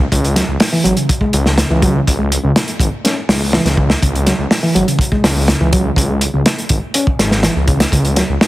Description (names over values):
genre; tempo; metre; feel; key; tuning
breakbeat, breaks; 123 BPM; 4/4; straight; C# minor; A4 = 440 Hz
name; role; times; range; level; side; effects
detuned saw bass; bass; 0.0-8.4 s; G#1 to C#2; -17 LUFS; equal; none
reed electric piano; riff; 0.1-8.2 s; C#3 to C#4; -17 LUFS; equal; tape echo
crunchy breakbeat drum kit; drums; 0.1-8.5 s; hi-hat, kick drum, snare drum; -15 LUFS; equal; none
room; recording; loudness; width
light reverb, small room reverb; heavily compressed radio sound, multiband compression; -12 LUFS; side -17 dB against mid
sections
0.0-8.5 A section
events
none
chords
0.0 C#5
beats
| 0.12 0.61 1.09 1.58 | 2.07 2.56 3.04 3.53 | 4.02 4.51 5.00 5.48 | 5.97 6.46 6.95 7.43 | 7.92 8.41